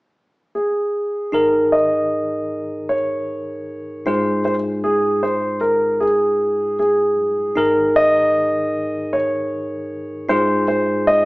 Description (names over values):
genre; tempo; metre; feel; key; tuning
pop; 77 BPM; 4/4; straight; Ab major; A4 = 436 Hz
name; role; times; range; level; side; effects
warm concert grand piano; melody; 0.6-11.3 s; Ab4 to Eb5; -17 LUFS; equal; none
bell-like tine electric piano; accompaniment; 1.3-11.3 s; Ab2 to Bb4; -23 LUFS; equal; fast stereo tremolo
room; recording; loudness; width
wet stone room reverb, RT60 1.2 s; band playing live in one room, small speaker sound; -16 LUFS; side -22 dB against mid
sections
0.0-1.3 A section; 1.3-11.3 B section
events
none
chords
0.0 N.C.; 1.3 Absus2; 4.1 Fm7/Ab; 7.6 Absus2; 10.3 Fm7/Ab